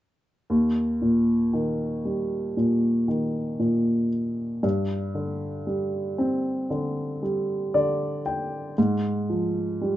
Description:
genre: pop.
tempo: 58 BPM.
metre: 4/4.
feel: straight.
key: Eb major.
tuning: A4 = 440 Hz.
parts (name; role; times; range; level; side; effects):
warm upright piano; accompaniment; 0.5-10.0 s; Eb2 to G5; -23 LUFS; equal; none.
room: wet small room reverb, RT60 0.5 s.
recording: rough home demo mix, nothing above 7.8 kHz.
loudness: -23 LUFS.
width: side -14 dB against mid.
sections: 0.5-10.0 A section.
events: upright piano fill 7.2-8.8.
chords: 0.5 Eb; 4.6 Gsus4; 8.8 Fmadd9/Ab.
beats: | 0.50 1.53 2.57 3.60 | 4.64 5.67 6.71 7.74 | 8.77 9.81.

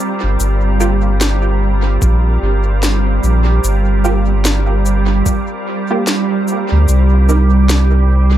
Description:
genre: ambient dub.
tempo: 74 BPM.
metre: 4/4.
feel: swing 59% on 16ths.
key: unclear.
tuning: A4 = 440 Hz.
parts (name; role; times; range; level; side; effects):
soft additive organ-like pad; sustained chords; 0.0-8.4 s; G3 to Bb4; -18 LUFS; right 2 dB; ensemble chorus, built-in reverb, vintage 12-bit sampler grit.
soft dub sub bass; bass; 0.2-8.4 s; G1 to D2; -12 LUFS; equal; none.
electronic cabasa and snare drum; drums; 0.4-7.9 s; none; -21 LUFS; left 1 dB; dub echo.
filtered dub chord stab; stabs; 0.8-7.6 s; Bb3 to Bb4; -23 LUFS; right 2 dB; ensemble chorus, dub echo.
electronic kick drum; drums; 2.0-5.5 s; none; -17 LUFS; equal; overdrive.
room: digital ambience.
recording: echo-heavy mix.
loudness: -11 LUFS.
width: side -12 dB against mid.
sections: 0.0-8.4 A section.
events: none.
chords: 0.4 Gm7; 6.9 Cm7.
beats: | 0.40 1.21 2.02 2.83 | 3.64 4.45 5.26 6.07 | 6.88 7.70.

